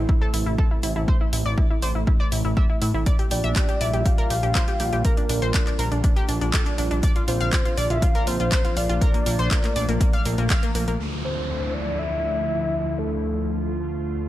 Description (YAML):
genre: progressive house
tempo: 121 BPM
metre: 4/4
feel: straight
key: D minor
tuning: A4 = 437 Hz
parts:
  - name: evolving wavetable pad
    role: sustained chords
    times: 0.0-14.3 s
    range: C3 to F4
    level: -31 LUFS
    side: equal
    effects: chorus, built-in reverb, sidechain pumping
  - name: analog pluck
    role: arpeggios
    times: 0.0-11.0 s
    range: Bb3 to F5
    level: -28 LUFS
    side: equal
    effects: chorus, sidechain pumping, digital delay
  - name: fat analog bass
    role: bass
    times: 0.0-14.3 s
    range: A1 to A2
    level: -25 LUFS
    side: equal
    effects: sidechain pumping
  - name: electronic kick drum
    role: drums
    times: 0.1-10.6 s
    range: none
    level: -21 LUFS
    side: equal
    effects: none
  - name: house drum kit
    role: drums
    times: 0.3-11.0 s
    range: handclaps, hi-hat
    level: -29 LUFS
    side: left 1 dB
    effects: low-pass filter on hats, low-pass filter on snare
  - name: soft octave-layered synth lead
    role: melody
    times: 3.3-13.7 s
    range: A4 to F5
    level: -28 LUFS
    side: left 1 dB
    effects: chorus, sidechain pumping, digital delay
  - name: downlifter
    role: sound effects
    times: 11.0-14.3 s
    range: none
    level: -35 LUFS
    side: equal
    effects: none
room: light reverb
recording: none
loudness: -20 LUFS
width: side -14 dB against mid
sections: 0.0-11.0 A section; 11.0-14.3 B section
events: filter sweep on ambient pad 0.0-11.0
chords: 0.0 Am; 3.1 Gm7/Bb; 7.0 Bb; 11.0 Dmadd9